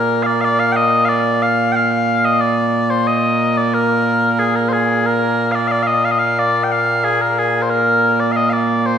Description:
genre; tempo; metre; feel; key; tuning
scottish traditional, Scottish pipe music; 91 BPM; 2/4; straight; Bb mixolydian; A4 = 440 Hz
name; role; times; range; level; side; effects
mellow small bagpipes; solo; 0.0-9.0 s; Bb2 to G5; -14 LUFS; equal; none
room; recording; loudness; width
wet recital hall reverb, RT60 1.7 s; recorded in a church or concert hall; -14 LUFS; side -8 dB against mid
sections
0.0-9.0 A section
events
none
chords
none

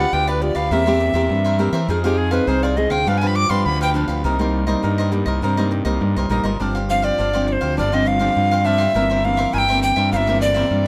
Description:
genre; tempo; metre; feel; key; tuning
samba; 102 BPM; 4/4; straight; unclear; A4 = 443 Hz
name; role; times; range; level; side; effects
breathy bright alto recorder; melody; 0.0-10.9 s; G4 to D6; -22 LUFS; equal; none
cavaquinho; accompaniment; 0.0-10.8 s; D4 to F5; -29 LUFS; equal; none
nylon-string guitar; accompaniment; 0.0-10.9 s; G2 to Ab4; -25 LUFS; equal; none
fuzz fingered electric bass; bass; 0.0-10.9 s; G1 to E3; -23 LUFS; equal; overdrive
room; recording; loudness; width
light reverb; none; -19 LUFS; mono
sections
0.0-6.6 A section; 6.6-10.9 B section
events
recorder solo 0.0-6.6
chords
0.0 G7/D; 0.7 C7/E; 1.9 Fm7; 3.1 G7; 4.3 Cm7; 6.6 G7sus4; 9.0 C7/G

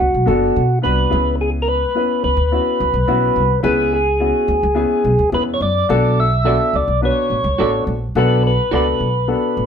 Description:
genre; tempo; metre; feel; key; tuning
soul; 106 BPM; 4/4; straight; B dorian; A4 = 439 Hz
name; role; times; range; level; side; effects
percussive tonewheel organ; melody; 0.0-9.7 s; F#4 to E5; -18 LUFS; equal; slow rotary speaker
dark baby grand piano; accompaniment; 0.0-9.6 s; B3 to B4; -20 LUFS; left 3 dB; none
upright bass; bass; 0.0-9.7 s; F#1 to B2; -19 LUFS; right 1 dB; none
electric guitar through a small old amp; stabs; 6.5-8.8 s; F#4 to D5; -22 LUFS; right 6 dB; none
room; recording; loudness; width
moderate studio reverb, RT60 0.7 s; band playing live in one room; -14 LUFS; side -7 dB against mid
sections
0.0-9.7 A section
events
none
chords
0.0 Bm7; 1.1 C#m7; 5.9 Bm7

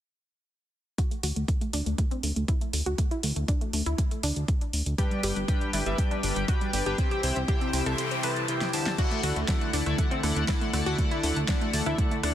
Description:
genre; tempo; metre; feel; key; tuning
progressive house; 120 BPM; 4/4; straight; D mixolydian; A4 = 440 Hz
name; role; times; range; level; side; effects
wide unison pluck; arpeggios; 1.0-12.3 s; G3 to B4; -32 LUFS; equal; sidechain pumping, ping-pong delay
deep house drum kit; drums; 1.0-12.3 s; crash cymbal, hi-hat, rim click, snare drum; -33 LUFS; equal; none
electronic kick drum; drums; 1.0-12.1 s; none; -26 LUFS; equal; none
fat analog bass; bass; 1.2-12.3 s; G1 to D2; -29 LUFS; equal; tube saturation, sidechain pumping
chorused polysynth; stabs; 5.0-12.3 s; C3 to A5; -29 LUFS; left 2 dB; cassette tape, sidechain pumping, ping-pong delay
noise sweep; sound effects; 7.4-9.0 s; none; -37 LUFS; right 1 dB; none
room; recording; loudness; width
light reverb, digital ambience; dense, heavily limited modern master; -25 LUFS; side -11 dB against mid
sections
1.0-9.0 A section; 9.0-12.3 B section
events
filter sweep on analog synth bass 1.0-9.0; filter sweep on synth pluck 1.0-9.0; noise sweep 7.4-9.0; kick drops out 8.0-9.0; drum fill 8.6-9.0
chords
1.0 D5; 5.0 G; 7.0 C; 9.0 Dadd9

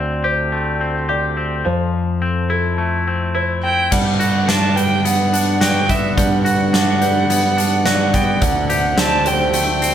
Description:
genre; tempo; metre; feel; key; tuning
post-rock; 107 BPM; 4/4; straight; G major; A4 = 440 Hz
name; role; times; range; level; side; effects
dark analog pad; sustained chords; 0.0-9.9 s; D4 to C6; -26 LUFS; equal; chorus, phaser
twangy electric guitar; arpeggios; 0.0-9.9 s; D3 to G4; -22 LUFS; left 2 dB; none
growling picked electric bass; bass; 0.0-9.9 s; D2 to G2; -20 LUFS; equal; overdrive
felt-muted upright piano; arpeggios; 0.2-9.8 s; A4 to D5; -29 LUFS; right 2 dB; none
dark violin; melody; 3.6-9.9 s; E5 to A5; -19 LUFS; right 2 dB; none
huge arena drum kit; drums; 3.9-9.9 s; crash cymbal, hi-hat, kick drum, snare drum; -19 LUFS; equal; none
room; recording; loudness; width
moderate large studio reverb, RT60 1.0 s; band playing live in one room; -14 LUFS; side -9 dB against mid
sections
0.0-3.9 A section; 3.9-9.9 B section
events
none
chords
0.0 D7sus4; 1.7 Fmaj7; 3.9 Gmaj7; 8.4 D7sus4

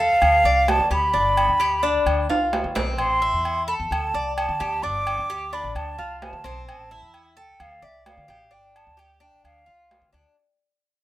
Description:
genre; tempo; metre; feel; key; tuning
latin, Cuban son and guajira; 130 BPM; 4/4; straight; unclear; A4 = 440 Hz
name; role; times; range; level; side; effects
mellow hollow silver concert flute; melody; 0.0-10.1 s; E5 to D6; -21 LUFS; right 1 dB; none
Cuban tres; arpeggios; 0.0-10.4 s; C4 to D5; -27 LUFS; left 2 dB; none
upright bass; bass; 0.0-10.2 s; G1 to D3; -29 LUFS; equal; none
agogo bells and timbales; percussion; 0.2-10.4 s; none; -28 LUFS; right 1 dB; none
room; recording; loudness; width
moderate studio reverb, RT60 0.7 s; rough home demo mix; -19 LUFS; side -15 dB against mid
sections
0.0-10.4 A section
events
fade-out 0.0-10.4; drum fill 2.3-3.0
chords
0.2 Dm7; 1.1 G; 2.1 Dm7; 3.0 Am; 3.9 D5; 4.8 G5; 5.8 Dm7; 6.7 Am; 7.6 Dm7; 8.5 Gsus2; 9.4 Dm7

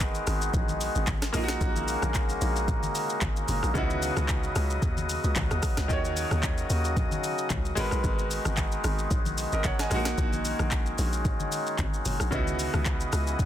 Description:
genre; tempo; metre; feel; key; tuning
amapiano; 112 BPM; 4/4; swing 55% on 16ths; F# mixolydian; A4 = 442 Hz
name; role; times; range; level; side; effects
bright grand piano; accompaniment; 0.0-13.5 s; C#3 to G#5; -33 LUFS; right 1 dB; none
hand-pumped harmonium; sustained chords; 0.0-13.5 s; C#3 to D#5; -32 LUFS; left 1 dB; sidechain pumping
hollow log drum bass; bass; 0.0-13.4 s; F#1 to D#2; -30 LUFS; equal; none
afro-pop drum kit; drums; 0.0-13.5 s; handclaps, hi-hat, kick drum, rim click, shaker, snare drum; -30 LUFS; equal; none
congas; percussion; 0.5-13.5 s; none; -37 LUFS; left 2 dB; none
room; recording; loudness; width
little or no reverb; dense, heavily limited modern master; -25 LUFS; side -11 dB against mid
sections
0.0-13.5 A section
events
none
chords
0.0 G#m9; 1.3 F#69/A#; 3.8 C#m11; 5.9 D#m7; 7.8 G#m9; 9.9 F#69/A#; 12.3 C#m11

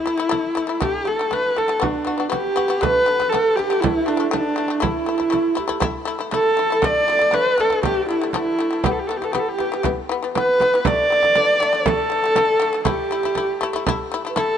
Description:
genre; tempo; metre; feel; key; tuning
mongolian traditional, Mongolian folk; 120 BPM; 4/4; straight; D zhi mode; A4 = 442 Hz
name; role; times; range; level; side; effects
rich horsehead fiddle; melody; 0.0-14.6 s; D4 to D5; -19 LUFS; equal; none
shamisen; arpeggios; 0.1-14.6 s; D3 to F#4; -25 LUFS; left 6 dB; none
frame drum; percussion; 0.1-14.5 s; none; -25 LUFS; right 5 dB; none
breathy mellow xiao; second line; 2.3-14.6 s; D4 to D5; -25 LUFS; right 5 dB; none
room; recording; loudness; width
moderate huge ambient reverb, RT60 6.7 s; nothing above 10.8 kHz; -17 LUFS; side -9 dB against mid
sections
0.0-2.8 A section; 2.8-14.6 B section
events
none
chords
0.0 A5; 0.8 D5; 1.8 B5; 2.8 D5; 4.8 A5; 6.8 D5; 8.8 E5; 10.9 D5; 12.9 A5

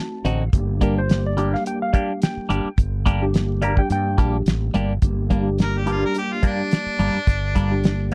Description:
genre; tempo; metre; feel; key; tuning
straight-eighth soul blues; 107 BPM; 4/4; swing 54% on 16ths; G minor; A4 = 439 Hz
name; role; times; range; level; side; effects
clean lap steel guitar; second line; 0.0-4.2 s; Bb4 to Bb5; -30 LUFS; equal; none
mellow tine electric piano; accompaniment; 0.0-8.1 s; G3 to G4; -29 LUFS; equal; ensemble chorus
semi-hollow electric guitar; stabs; 0.2-8.1 s; G2 to G4; -25 LUFS; equal; phaser
fretless electric bass; bass; 0.2-8.1 s; G1 to G2; -25 LUFS; equal; none
damped 70s drum kit; drums; 0.2-8.1 s; hi-hat, kick drum, snare drum; -21 LUFS; equal; none
warm harmonica; melody; 5.6-8.1 s; D4 to Bb4; -29 LUFS; equal; slapback echo
room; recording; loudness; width
little or no reverb; dry, close 1970s-style studio recording; -21 LUFS; mono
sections
0.0-5.0 A section; 5.0-8.1 A section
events
electric slide guitar solo 0.0-5.0; harmonica solo 5.0-8.1; tine electric piano fill 7.8-8.1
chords
0.0 D7b9; 0.5 Gm

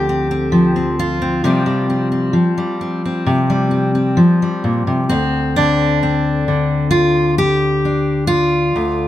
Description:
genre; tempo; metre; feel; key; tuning
folk, solo fingerstyle acoustic guitar; 66 BPM; 4/4; straight; D minor; A4 = 440 Hz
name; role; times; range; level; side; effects
fingerpicked steel-string acoustic guitar; solo; 0.0-9.1 s; D2 to G4; -14 LUFS; left 1 dB; none
room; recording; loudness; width
light reverb; close, detailed microphones; -14 LUFS; side -13 dB against mid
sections
0.0-5.1 A section; 5.1-9.1 B section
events
none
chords
0.0 F/D; 1.4 Csus4; 5.1 Dm7

